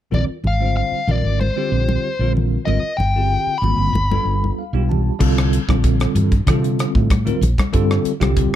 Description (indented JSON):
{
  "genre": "electric jazz fusion",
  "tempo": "95 BPM",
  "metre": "4/4",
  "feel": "straight",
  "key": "unclear",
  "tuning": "A4 = 440 Hz",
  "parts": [
    { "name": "smooth overdriven lead guitar", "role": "melody", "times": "0.1-4.5 s", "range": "C5 to B5", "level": "-22 LUFS", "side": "left 3 dB", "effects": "none" },
    { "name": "bell-like tine electric piano", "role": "accompaniment", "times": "0.1-8.6 s", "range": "D3 to A5", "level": "-22 LUFS", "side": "equal", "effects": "fast stereo tremolo, lush chorus" },
    { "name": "woody fretless electric bass", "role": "bass", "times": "0.1-8.6 s", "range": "G1 to C3", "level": "-19 LUFS", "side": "equal", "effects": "none" },
    { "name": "congas", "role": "percussion", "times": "0.1-8.4 s", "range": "none", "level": "-26 LUFS", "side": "left 2 dB", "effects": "none" },
    { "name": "crisp fusion drum kit", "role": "drums", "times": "5.2-8.5 s", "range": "crash cymbal, hi-hat, kick drum, rim click", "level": "-20 LUFS", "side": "equal", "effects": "none" }
  ],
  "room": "little or no reverb",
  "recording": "dark, warm production",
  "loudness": "-16 LUFS",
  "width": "side -11 dB against mid",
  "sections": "0.1-5.2 A section; 5.2-8.6 B section",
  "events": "tine electric piano fill 4.3-5.2",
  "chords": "0.1 Bb13; 2.7 Abmaj9; 3.9 G9; 5.2 C13sus4",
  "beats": "| 0.13 0.77 1.40 2.04 | 2.67 3.31 3.94 4.58 | 5.21 5.84 6.47 7.11 | 7.74 8.37"
}